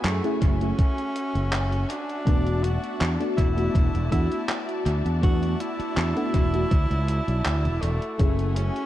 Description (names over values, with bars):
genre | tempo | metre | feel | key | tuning
vaporwave | 81 BPM | 4/4 | straight | unclear | A4 = 440 Hz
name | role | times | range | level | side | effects
warm tenor saxophone | melody | 0.0-8.9 s | A3 to F#4 | -30 LUFS | equal | tape echo
FM electric piano with soft pad layer | accompaniment | 0.0-8.9 s | A3 to G#4 | -29 LUFS | left 1 dB | analog chorus, tape echo
clear symphonic string section | sustained chords | 0.0-8.9 s | A3 to A5 | -36 LUFS | left 2 dB | none
fretless electric bass | bass | 0.0-8.7 s | E1 to F#2 | -24 LUFS | equal | none
gated 80s digital drum machine | drums | 0.0-8.9 s | handclaps, hi-hat | -33 LUFS | equal | gated reverb, tape echo
electronic kick drum | drums | 0.4-8.4 s | none | -22 LUFS | equal | none
room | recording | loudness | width
light reverb | echo-heavy mix, cassette tape | -22 LUFS | side -13 dB against mid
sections
0.0-8.9 A section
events
none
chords
0.0 F#m9; 2.3 E9sus4; 8.2 F#m9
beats
0.05 0.79 1.53 | 2.27 3.01 3.75 4.49 | 5.23 5.97 6.71 7.45 | 8.19